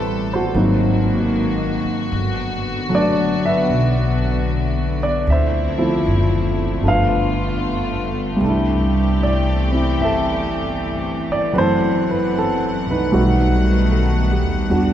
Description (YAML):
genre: jazz ballad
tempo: 76 BPM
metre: 4/4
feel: swing 66% on 8ths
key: unclear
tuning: A4 = 441 Hz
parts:
  - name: warm grand piano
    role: accompaniment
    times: 0.0-14.9 s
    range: E3 to F5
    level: -19 LUFS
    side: equal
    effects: none
  - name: warm studio string section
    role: sustained chords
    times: 0.0-14.9 s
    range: D3 to F#5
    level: -24 LUFS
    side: left 1 dB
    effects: none
  - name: upright bass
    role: bass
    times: 0.0-14.9 s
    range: F#1 to E2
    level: -21 LUFS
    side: equal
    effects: none
room: wet cathedral reverb, RT60 5.6 s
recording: recorded in a church or concert hall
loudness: -16 LUFS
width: side -10 dB against mid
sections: 0.0-14.9 A section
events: none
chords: 0.0 Am7; 0.5 G#9; 2.1 Gmaj7; 5.3 Dm9; 6.8 G9; 8.4 C6; 11.6 F#m7b5; 13.1 B7b13